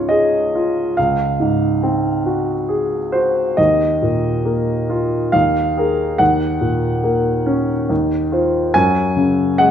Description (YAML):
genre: classical, impressionist solo piano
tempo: 70 BPM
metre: 3/4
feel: rubato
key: unclear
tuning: A4 = 440 Hz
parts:
  - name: warm concert grand piano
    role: solo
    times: 0.0-9.7 s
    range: Db2 to Ab5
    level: -15 LUFS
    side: equal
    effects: none
room: moderate recital hall reverb, RT60 1.6 s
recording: none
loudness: -15 LUFS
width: side -9 dB against mid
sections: 0.0-9.7 A section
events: none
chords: 0.0 Db; 1.0 Ab6/Db; 3.6 Ebsus2; 5.3 Ebsus24; 6.2 Ebm7; 7.9 Cmadd11/Eb; 8.7 Gbsus2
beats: 0.10 | 0.97 1.82 2.69 | 3.58 4.45 5.33 | 6.20 7.05 7.90 | 8.74 9.58